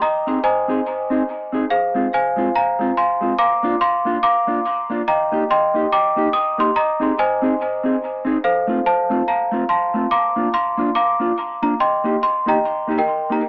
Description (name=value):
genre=ska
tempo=143 BPM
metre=4/4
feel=swing 60% on 8ths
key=Eb major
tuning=A4 = 440 Hz
part: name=worn celesta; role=melody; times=0.0-13.4 s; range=Ab4 to Eb6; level=-20 LUFS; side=equal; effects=dub echo
part: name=mellow electric guitar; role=accompaniment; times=0.3-13.4 s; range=Ab3 to Ab4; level=-25 LUFS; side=equal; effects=phaser, dub echo
room=moderate club reverb, RT60 0.5 s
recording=AM radio sound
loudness=-19 LUFS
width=mono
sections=0.0-11.8 A section; 11.8-13.5 B section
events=none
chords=0.0 Ab; 1.7 Fm; 3.4 Bb; 5.1 Eb; 6.8 Ab; 8.4 F; 10.1 Bb; 11.8 Eb